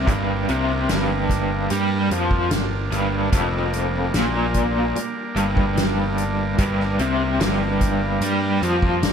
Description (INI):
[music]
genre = psychedelic rock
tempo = 74 BPM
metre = 4/4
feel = straight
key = G minor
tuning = A4 = 441 Hz
[part]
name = combo organ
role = sustained chords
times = 0.0-9.1 s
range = G3 to Bb4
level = -28 LUFS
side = right 4 dB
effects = spring reverb
[part]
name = raw garage guitar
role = riff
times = 0.0-9.1 s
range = F2 to G3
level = -22 LUFS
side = equal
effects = overdrive, tremolo
[part]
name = fuzz picked electric bass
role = bass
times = 0.0-9.1 s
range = F1 to G2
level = -25 LUFS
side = equal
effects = overdrive
[part]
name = soft-mallet drum kit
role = drums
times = 0.1-9.1 s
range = hi-hat, kick drum, snare drum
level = -24 LUFS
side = equal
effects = none
[sound]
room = moderate plate reverb, RT60 3.5 s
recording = dreamy mix soaked in reverb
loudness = -19 LUFS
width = side -7 dB against mid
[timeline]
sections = 0.0-9.1 A section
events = none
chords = 0.0 Gm